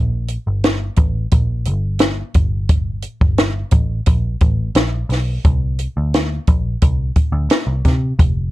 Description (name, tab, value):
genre	indie pop, bedroom pop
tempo	87 BPM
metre	4/4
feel	straight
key	unclear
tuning	A4 = 441 Hz
part	vintage muted picked electric bass	bass	0.0-8.5 s	F1 to C3	-19 LUFS	equal	none
part	compact cocktail drum kit	drums	0.3-8.4 s	hi-hat, kick drum, snare drum	-16 LUFS	equal	vintage 12-bit sampler grit
room	little or no reverb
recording	dark, warm production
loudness	-15 LUFS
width	side -17 dB against mid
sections	0.0-8.5 A section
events	none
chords	none